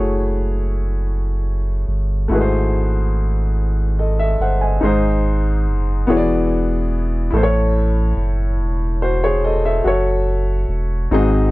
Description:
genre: slow gospel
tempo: 48 BPM (dotted quarters)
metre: 6/8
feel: straight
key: unclear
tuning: A4 = 440 Hz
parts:
  - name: clear upright piano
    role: accompaniment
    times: 0.0-11.5 s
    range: G#2 to G#5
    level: -19 LUFS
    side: left 1 dB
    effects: none
  - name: warm sub bass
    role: bass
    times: 0.0-11.5 s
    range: E1 to A1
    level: -18 LUFS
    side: equal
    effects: none
room: little or no reverb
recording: dry, close 1970s-style studio recording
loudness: -16 LUFS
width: side -19 dB against mid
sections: 0.0-4.8 A section; 4.8-11.5 B section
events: none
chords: 0.0 F#m9; 2.3 G#7b9b13; 4.8 G#; 6.1 E9; 7.3 A

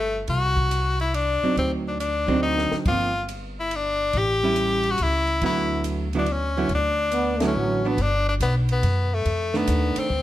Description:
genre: jazz, small-group swing and bop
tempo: 140 BPM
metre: 3/4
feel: swing 66% on 8ths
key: D major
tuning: A4 = 439 Hz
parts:
  - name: edgy tenor saxophone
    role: melody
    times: 0.0-10.2 s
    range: A3 to G4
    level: -24 LUFS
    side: left 2 dB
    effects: none
  - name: upright bass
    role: bass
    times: 0.0-10.2 s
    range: G1 to F#2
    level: -26 LUFS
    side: equal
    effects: none
  - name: compact cocktail drum kit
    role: drums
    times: 0.3-10.2 s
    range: hi-hat, kick drum, ride cymbal, snare drum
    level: -33 LUFS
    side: equal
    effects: none
  - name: archtop guitar, miked and amplified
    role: accompaniment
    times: 1.4-10.1 s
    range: D3 to E4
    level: -26 LUFS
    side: right 4 dB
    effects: none
  - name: breathy trombone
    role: second line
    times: 7.1-8.0 s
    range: F#3 to B3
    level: -27 LUFS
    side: right 3 dB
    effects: none
room: moderate large studio reverb, RT60 1.3 s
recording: none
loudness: -20 LUFS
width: side -14 dB against mid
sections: 0.0-8.0 A section; 8.0-10.2 B section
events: drum fill 2.4-2.9; band accent 7.3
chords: 0.3 Csus2; 1.6 D7b9; 2.9 Gm7; 4.1 A7; 5.4 D69; 8.0 Gmaj7; 9.3 F6

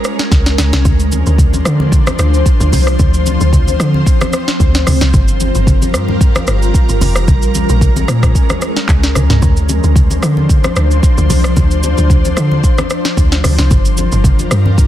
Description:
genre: amapiano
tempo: 112 BPM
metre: 4/4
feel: swing 55% on 16ths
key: D minor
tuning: A4 = 441 Hz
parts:
  - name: ethereal airy pad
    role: sustained chords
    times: 0.0-14.9 s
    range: F3 to C5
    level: -18 LUFS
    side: left 1 dB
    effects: ensemble chorus, built-in reverb, sidechain pumping
  - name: afro-pop drum kit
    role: drums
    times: 0.0-14.9 s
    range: handclaps, hi-hat, kick drum, rim click, shaker, snare drum, toms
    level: -13 LUFS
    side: equal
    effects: none
  - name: deep log drum bass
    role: bass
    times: 0.3-14.9 s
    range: F1 to D3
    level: -13 LUFS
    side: equal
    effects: none
  - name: congas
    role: percussion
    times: 0.8-14.8 s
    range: none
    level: -20 LUFS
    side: left 1 dB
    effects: none
room: little or no reverb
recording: dense, heavily limited modern master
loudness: -9 LUFS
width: side -12 dB against mid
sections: 0.0-14.9 A section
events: drum fill 0.3-0.9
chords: 0.0 Bbm7; 0.9 Dm7; 5.1 Gm7; 7.3 Bbm7; 9.4 Dm7; 13.7 Gm7

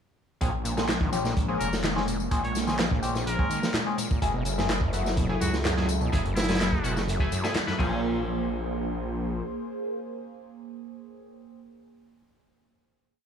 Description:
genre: breakbeat, breaks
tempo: 126 BPM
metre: 4/4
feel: straight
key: unclear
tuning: A4 = 440 Hz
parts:
  - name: phased analog pad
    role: sustained chords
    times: 0.4-11.6 s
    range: Gb3 to C5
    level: -33 LUFS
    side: right 1 dB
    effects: phaser, chorus, sidechain pumping
  - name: overdriven acid bass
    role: riff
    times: 0.4-8.2 s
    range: Gb2 to F3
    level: -33 LUFS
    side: equal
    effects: distortion, dub echo
  - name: band-passed chord stab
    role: stabs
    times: 0.4-11.6 s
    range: A3 to Cb5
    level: -34 LUFS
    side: left 2 dB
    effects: phaser, dub echo
  - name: phased detuned saw bass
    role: bass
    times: 0.4-9.4 s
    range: F1 to Db2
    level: -30 LUFS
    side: left 1 dB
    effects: phaser
  - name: crunchy breakbeat drum kit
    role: drums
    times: 0.4-7.9 s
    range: crash cymbal, hi-hat, kick drum, snare drum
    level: -29 LUFS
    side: equal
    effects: none
  - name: electronic tambourine and handclaps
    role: drums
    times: 0.4-7.7 s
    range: none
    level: -35 LUFS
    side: left 1 dB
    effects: none
  - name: trumpet with straight mute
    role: melody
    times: 1.6-7.0 s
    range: Fb4 to Db5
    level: -37 LUFS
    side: equal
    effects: telephone sound, vintage 12-bit sampler grit, dub echo
room: small room ambience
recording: none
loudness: -24 LUFS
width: side -8 dB against mid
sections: 0.4-8.0 drop; 8.0-11.8 final hit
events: drop 0.4-8.0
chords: 0.4 Bbm9; 4.2 Gbm9; 7.8 Bbm9

